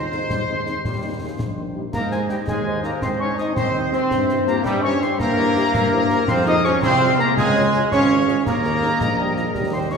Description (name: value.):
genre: military-style march for wind band.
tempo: 110 BPM (dotted quarters).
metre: 6/8.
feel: straight.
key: Ab major.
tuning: A4 = 440 Hz.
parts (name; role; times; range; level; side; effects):
clear trumpet section; melody; 0.0-10.0 s; G4 to Eb5; -29 LUFS; equal; none.
mellow piccolo; second line; 0.0-10.0 s; G5 to Eb6; -26 LUFS; left 3 dB; none.
warm euphonium; second line; 0.0-1.6, 9.0-10.0 s; F3 to Eb4; -31 LUFS; right 2 dB; none.
warm woodwind section; second line; 0.0-10.0 s; G4 to F5; -30 LUFS; left 1 dB; none.
mellow trombone section; sustained chords; 0.0-10.0 s; Db3 to Eb4; -21 LUFS; right 1 dB; none.
mellow tuba; bass; 0.0-10.0 s; Ab1 to Ab2; -25 LUFS; right 1 dB; none.
mellow French horn section; accompaniment; 0.1-10.0 s; Bb3 to Db5; -29 LUFS; left 4 dB; none.
concert snare drum, concert bass drum and clash cymbals; drums; 0.1-10.0 s; none; -29 LUFS; left 2 dB; none.
room: wet scoring stage reverb, RT60 2.0 s.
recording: heard from further back in the room.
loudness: -17 LUFS.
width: side -5 dB against mid.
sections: 0.0-1.9 A section; 1.9-10.0 B section.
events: none.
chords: 0.0 Ab/Eb; 0.8 Eb; 1.9 Ab; 4.1 C7/G; 6.3 Fm; 7.4 Db; 8.5 Ebsus4.